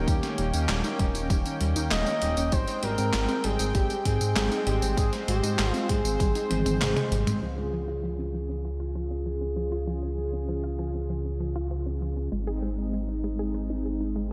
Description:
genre	synthwave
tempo	98 BPM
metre	4/4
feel	straight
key	Ab major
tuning	A4 = 440 Hz
part	expressive portamento lead	melody	0.0-7.1 s	G4 to Eb5	-33 LUFS	equal	chorus, tape echo, slapback echo
part	brassy analog pad	sustained chords	0.0-14.3 s	Db3 to G5	-34 LUFS	equal	chorus, tremolo, sidechain pumping
part	unison pluck	arpeggios	0.0-14.3 s	F3 to Ab4	-37 LUFS	equal	vintage 12-bit sampler grit, delay, slapback echo
part	chorused synth bass	bass	0.0-14.3 s	Eb1 to Ab2	-32 LUFS	equal	tube saturation, sidechain pumping
part	clean 12-bit digital drum machine	drums	0.1-7.5 s	crash cymbal, handclaps, hi-hat, snare drum, tambourine, toms	-34 LUFS	equal	low-pass filter on hats, low-pass filter on perc, low-pass filter on snare, low-pass filter on toms, low-pass filter on cymbals, low-pass filter on room
part	electronic kick drum	drums	0.1-6.3 s	none	-29 LUFS	equal	none
room	wet concert hall reverb, RT60 2.2 s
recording	big arena sound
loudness	-28 LUFS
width	mono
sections	0.0-7.4 A section; 7.4-14.3 B section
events	drum fill 6.5-7.4; filter sweep on analog synth pad 7.4-14.3; filter sweep on synth arpeggio sound 7.4-14.3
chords	0.0 Eb7; 2.5 Abmaj7; 7.4 Db; 12.3 Ab

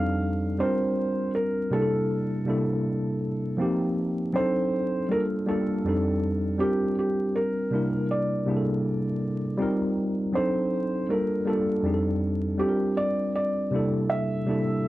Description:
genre	hip hop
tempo	80 BPM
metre	4/4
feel	swing 57% on 16ths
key	unclear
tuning	A4 = 439 Hz
part	felt-muted upright piano	melody	0.0-14.9 s	G4 to F5	-28 LUFS	right 1 dB	low-pass filter
part	mellow tine electric piano	accompaniment	0.0-14.9 s	F2 to Bb4	-25 LUFS	equal	medium stereo tremolo, low-pass filter
room	light reverb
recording	vinyl crackle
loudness	-24 LUFS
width	side -16 dB against mid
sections	0.0-14.9 A section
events	none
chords	0.0 F13; 0.6 Bb6; 1.7 C13; 3.6 F9sus4; 4.3 D7b9; 5.1 Gm9; 5.8 F13; 6.6 Bb6; 7.7 C13; 9.6 F9sus4; 10.3 D7b9; 11.1 Gm9; 11.8 F13; 12.6 Bb6; 13.7 C13

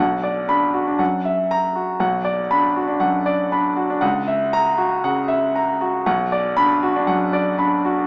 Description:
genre	classical, virtuoso piano study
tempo	118 BPM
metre	4/4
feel	rubato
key	B minor from 4.0 s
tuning	A4 = 439 Hz
part	warm concert grand piano	solo	0.0-8.1 s	B1 to B5	-20 LUFS	equal	none
room	moderate recital hall reverb, RT60 1.4 s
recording	small speaker sound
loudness	-20 LUFS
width	mono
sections	0.0-8.1 A section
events	none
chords	0.0 Bm; 1.0 F#7; 2.0 Bm; 4.0 F#7/C#; 6.1 Bm

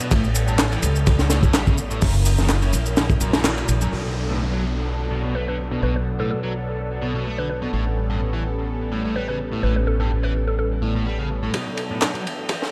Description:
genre	breakbeat, breaks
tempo	126 BPM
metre	4/4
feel	swing 54% on 16ths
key	B minor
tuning	A4 = 441 Hz
part	phased analog pad	sustained chords	0.0-12.7 s	F#3 to A#4	-32 LUFS	equal	phaser, chorus, sidechain pumping
part	overdriven electric guitar	riff	0.0-12.2 s	E2 to A3	-31 LUFS	equal	tube saturation, low-pass filter, dub echo
part	crunchy breakbeat drum kit	drums	0.0-3.8, 11.5-12.7 s	hi-hat, kick drum, ride cymbal, snare drum	-24 LUFS	equal	high-pass filter on kick, high-pass filter on cymbals, high-pass filter on hats, high-pass filter on snare, high-pass filter on room, dub echo
part	electronic shaker and handclaps	drums	0.0-3.9, 12.0-12.1 s	none	-32 LUFS	equal	low-pass filter on perc, low-pass filter on snare, low-pass filter on room, dub echo
part	upright bass	bass	0.1-12.7 s	F#1 to E2	-26 LUFS	equal	tube saturation, high-pass filter, low-pass filter
part	downlifter and riser	sound effects	3.9-7.7, 12.3-12.7 s	none	-39 LUFS	equal	none
part	mallet-like synth pluck	melody	5.3-10.7 s	A4 to B4	-33 LUFS	equal	chorus, AM radio sound, dub echo
room	light reverb, small room ambience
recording	echo-heavy mix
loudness	-22 LUFS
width	mono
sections	0.0-3.9 A section; 3.9-11.5 B section; 11.5-12.7 C section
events	band accent 3.4; build-up 11.5-12.7; filter sweep on overdriven electric guitar 11.5-12.7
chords	0.1 A9; 2.0 F#7; 3.9 Bm7; 7.7 A9; 11.5 Bm7

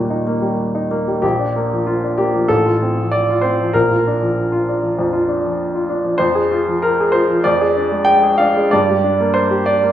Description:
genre	classical, romantic character piece for solo piano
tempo	96 BPM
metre	4/4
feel	rubato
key	unclear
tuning	A4 = 438 Hz
part	clear grand piano	solo	0.0-9.9 s	A1 to G5	-14 LUFS	equal	none
room	wet recital hall reverb, RT60 1.2 s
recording	recorded in a church or concert hall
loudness	-14 LUFS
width	side -11 dB against mid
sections	0.0-9.9 A section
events	none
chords	0.0 Eb; 1.2 Bb; 2.5 F/A; 3.7 Bb; 6.2 Fm; 7.5 Ddim/F; 8.7 Gm

